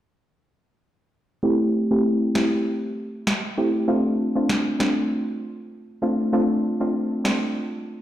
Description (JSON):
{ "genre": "dancehall", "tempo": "98 BPM", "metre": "4/4", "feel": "swing 56% on 16ths", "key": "A minor", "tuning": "A4 = 440 Hz", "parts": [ { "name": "soft round pluck", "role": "accompaniment", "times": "1.4-7.5 s", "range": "A3 to G4", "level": "-21 LUFS", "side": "equal", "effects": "chorus, low-pass filter" }, { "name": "electronic snare drum", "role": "drums", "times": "2.4-7.4 s", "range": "none", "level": "-26 LUFS", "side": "equal", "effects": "none" } ], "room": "moderate plate reverb, RT60 1.8 s, digital ambience", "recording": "played on a big sound system in a bare room, large studio reverb", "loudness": "-20 LUFS", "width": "side -12 dB against mid", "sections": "1.4-8.0 A section", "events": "filter sweep on synth pluck 1.4-8.0", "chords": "1.4 Am7; 3.9 F6", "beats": "| 1.43 2.04 2.66 3.27 | 3.88 4.49 5.11 5.72 | 6.33 6.94" }